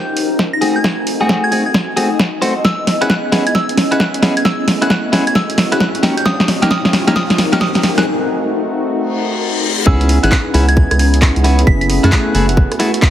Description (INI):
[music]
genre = UK garage, two-step garage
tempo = 133 BPM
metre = 4/4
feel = swing 64% on 16ths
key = C# minor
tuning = A4 = 440 Hz
[part]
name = warm analog pad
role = sustained chords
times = 0.0-13.1 s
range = A3 to B#4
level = -23 LUFS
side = right 1 dB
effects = chorus, vintage 12-bit sampler grit, sidechain pumping
[part]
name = rubbery square bass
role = bass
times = 0.0-12.7 s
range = D#1 to G#2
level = -16 LUFS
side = equal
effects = sidechain pumping, high-pass filter
[part]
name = ethereal airy pad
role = texture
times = 0.0-13.1 s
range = C#4 to C#6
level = -21 LUFS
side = left 2 dB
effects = ensemble chorus, built-in reverb, sidechain pumping
[part]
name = punchy analog drum machine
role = drums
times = 0.2-13.1 s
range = handclaps, hi-hat, rim click, snare drum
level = -16 LUFS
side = equal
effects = none
[part]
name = electronic kick drum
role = drums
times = 0.4-13.1 s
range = none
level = -15 LUFS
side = equal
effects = high-pass filter on kick, high-pass filter on room
[part]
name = soft synth bell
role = melody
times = 0.5-12.7 s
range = D#6 to B6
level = -22 LUFS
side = right 1 dB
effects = chorus, dub echo
[part]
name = clean electric guitar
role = stabs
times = 0.6-12.9 s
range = A3 to B#4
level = -19 LUFS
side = left 1 dB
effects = spring reverb
[part]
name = riser and reverse cymbal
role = sound effects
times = 4.7-9.9 s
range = none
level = -25 LUFS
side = left 2 dB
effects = none
[sound]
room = moderate plate reverb, RT60 2.2 s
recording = heavily compressed radio sound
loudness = -12 LUFS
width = side -11 dB against mid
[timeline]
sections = 0.0-9.9 A section; 9.9-13.1 B section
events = build-up 0.0-9.9; drum fill 0.0-8.1; filter sweep on analog synth pad 0.0-9.9; break 8.1-9.9; reverse cymbal 9.1-9.9; drop 9.9-13.1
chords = 0.0 D#13; 0.6 G#7b9; 2.6 C#m7; 4.5 F#m11; 6.0 D#13; 7.8 G#7b9; 9.9 C#m7; 11.7 F#m11